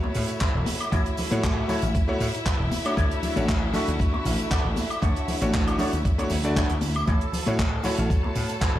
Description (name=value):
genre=nu-disco, nu disco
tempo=117 BPM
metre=4/4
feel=straight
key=A major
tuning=A4 = 441 Hz
part: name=bright electric grand piano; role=accompaniment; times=0.0-8.8 s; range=A3 to C#6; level=-29 LUFS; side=left 1 dB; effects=sidechain pumping, ping-pong delay
part: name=clear symphonic string section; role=sustained chords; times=0.0-8.8 s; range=E4 to A5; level=-34 LUFS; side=left 2 dB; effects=sidechain pumping
part: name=electric guitar with an envelope filter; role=riff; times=0.0-8.8 s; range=D4 to E5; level=-34 LUFS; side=right 2 dB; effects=lush chorus, ping-pong delay
part: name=congas and tambourine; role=percussion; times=0.0-8.7 s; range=none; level=-35 LUFS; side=left 2 dB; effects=none
part: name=damped 70s drum kit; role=drums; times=0.1-8.7 s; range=handclaps, hi-hat, woodblock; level=-32 LUFS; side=right 1 dB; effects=none
part: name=vintage slap bass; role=bass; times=0.2-8.8 s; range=E1 to A2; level=-27 LUFS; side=equal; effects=none
part: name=electronic kick drum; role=drums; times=0.4-8.7 s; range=none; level=-25 LUFS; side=equal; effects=none
room=light reverb, small room ambience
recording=played on a big sound system in a bare room, large studio reverb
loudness=-22 LUFS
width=side -13 dB against mid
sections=0.0-8.8 A section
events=none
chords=0.0 A6; 3.0 Dmaj7; 7.1 A6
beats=0.41 | 0.92 1.44 1.95 2.46 | 2.98 3.49 4.00 4.51 | 5.03 5.54 6.05 6.56 | 7.08 7.59 8.10 8.62